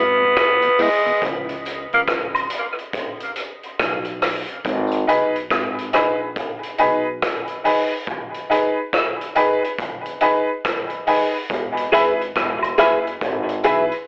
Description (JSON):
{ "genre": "dub reggae", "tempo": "70 BPM", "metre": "4/4", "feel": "swing 63% on 16ths", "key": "unclear", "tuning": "A4 = 442 Hz", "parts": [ { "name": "raspy tenor saxophone", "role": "melody", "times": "0.0-2.0 s", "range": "G#3 to B3", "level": "-18 LUFS", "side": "equal", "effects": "cassette tape, dub echo" }, { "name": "mellow tonewheel organ", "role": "accompaniment", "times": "0.0-1.6 s", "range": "E2 to E4", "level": "-29 LUFS", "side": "equal", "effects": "slow rotary speaker, cassette tape, dub echo" }, { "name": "upright bass", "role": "bass", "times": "0.0-13.9 s", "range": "E1 to C#2", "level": "-28 LUFS", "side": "equal", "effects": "transformer saturation" }, { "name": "vintage drum kit", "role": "drums", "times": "0.4-14.1 s", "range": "hi-hat, kick drum, rim click", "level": "-24 LUFS", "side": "equal", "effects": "cassette tape, dub echo" }, { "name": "tambourine and woodblock", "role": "percussion", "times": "0.8-4.5, 11.9-13.9 s", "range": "none", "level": "-28 LUFS", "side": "equal", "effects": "dub echo" }, { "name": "bright upright piano", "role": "stabs", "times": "5.1-13.9 s", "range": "D#4 to B4", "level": "-19 LUFS", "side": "equal", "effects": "cassette tape, dub echo" }, { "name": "clean electric guitar", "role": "accompaniment", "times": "11.9-13.8 s", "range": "G#4 to E5", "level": "-20 LUFS", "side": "equal", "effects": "harmonic tremolo, cassette tape, dub echo" } ], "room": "moderate studio reverb, RT60 0.6 s", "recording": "home recording on cassette, telephone sound", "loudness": "-17 LUFS", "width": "side -36 dB against mid", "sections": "0.0-14.1 A section", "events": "break 0.0-14.1; part muted 4.6-11.5", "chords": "0.0 E; 1.2 Bsus2; 4.6 G#m; 11.5 E" }